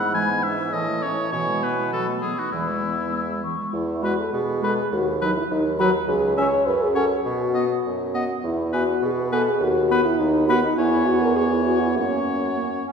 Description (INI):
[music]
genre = quick classical-period movement for wind quintet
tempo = 102 BPM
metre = 2/4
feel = straight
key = E major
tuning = A4 = 441 Hz
[part]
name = mellow hollow silver concert flute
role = melody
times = 0.0-12.8 s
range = F#5 to E6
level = -30 LUFS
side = left 4 dB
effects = none
[part]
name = clear oboe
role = second line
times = 0.0-12.9 s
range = E4 to G#5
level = -28 LUFS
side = left 1 dB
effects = none
[part]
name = mellow French horn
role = accompaniment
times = 0.0-12.8 s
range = E3 to C#5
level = -23 LUFS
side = left 1 dB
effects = none
[part]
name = mellow clarinet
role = accompaniment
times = 0.0-12.9 s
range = E3 to E4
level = -28 LUFS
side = right 4 dB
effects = none
[part]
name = warm bassoon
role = bass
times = 0.0-12.9 s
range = C#2 to B2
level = -27 LUFS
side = right 2 dB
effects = none
[sound]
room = wet concert hall reverb, RT60 2.4 s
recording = heard from further back in the room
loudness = -20 LUFS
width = side -6 dB against mid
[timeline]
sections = 0.0-3.7 A section; 3.7-12.9 B section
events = none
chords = 0.1 E7/G#; 0.7 A; 1.3 E/B; 1.9 B7; 2.5 E; 4.9 B/D#; 6.1 C#5; 6.7 F#m; 7.3 B5; 8.4 E; 9.6 B/D#; 10.8 C#m7/E; 12.0 F#